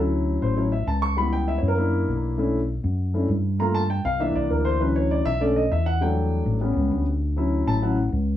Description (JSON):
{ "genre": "Afro-Cuban jazz", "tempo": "198 BPM", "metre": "4/4", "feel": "straight", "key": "D major", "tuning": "A4 = 439 Hz", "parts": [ { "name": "warm concert grand piano", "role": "accompaniment", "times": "0.0-8.0 s", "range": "D3 to C#6", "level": "-23 LUFS", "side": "left 1 dB", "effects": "none" }, { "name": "fingered electric bass", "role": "bass", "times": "0.0-8.4 s", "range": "A1 to G2", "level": "-24 LUFS", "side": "left 1 dB", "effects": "none" } ], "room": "moderate studio reverb, RT60 0.5 s", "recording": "band playing live in one room, small room ambience", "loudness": "-21 LUFS", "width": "side -12 dB against mid", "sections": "0.0-8.4 A section", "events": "grand piano solo 0.0-8.4", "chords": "0.0 Dmaj7; 1.2 C#m7b5; 1.8 F#aug7; 2.4 Bm11; 3.6 Gm7; 4.2 C9; 4.8 Dmaj7; 5.4 Bm9; 6.0 Em11; 6.6 A9; 7.2 Dmaj7", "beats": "0.27 0.57 0.87 | 1.18 1.48 1.78 2.08 | 2.38 2.69 2.99 3.29 | 3.59 3.90 4.20 4.50 | 4.80 5.11 5.41 5.71 | 6.01 6.31 6.62 6.92 | 7.22 7.52 7.82 8.13" }